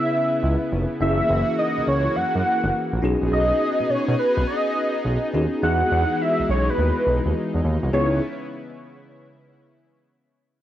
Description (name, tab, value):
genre	R&B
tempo	104 BPM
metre	4/4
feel	swing 66% on 16ths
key	C# dorian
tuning	A4 = 440 Hz
part	wide unison lead	melody	0.0-8.2 s	B4 to F#5	-22 LUFS	equal	cassette tape, plate reverb
part	bell-like tine electric piano	accompaniment	0.0-8.2 s	A#3 to G#4	-26 LUFS	left 1 dB	ensemble chorus, cassette tape, plate reverb
part	lush unison pad	sustained chords	0.0-8.2 s	C#3 to G#4	-29 LUFS	equal	chorus, cassette tape, plate reverb
part	smooth gliding synth bass	bass	0.4-8.2 s	E#1 to B2	-23 LUFS	equal	none
room	moderate studio reverb, RT60 0.5 s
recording	home recording on cassette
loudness	-19 LUFS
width	side -12 dB against mid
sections	0.0-7.9 A section; 7.9-10.2 B section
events	none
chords	0.0 C#m7; 1.0 F#7; 3.0 B6; 5.6 Emaj7; 7.9 C#m7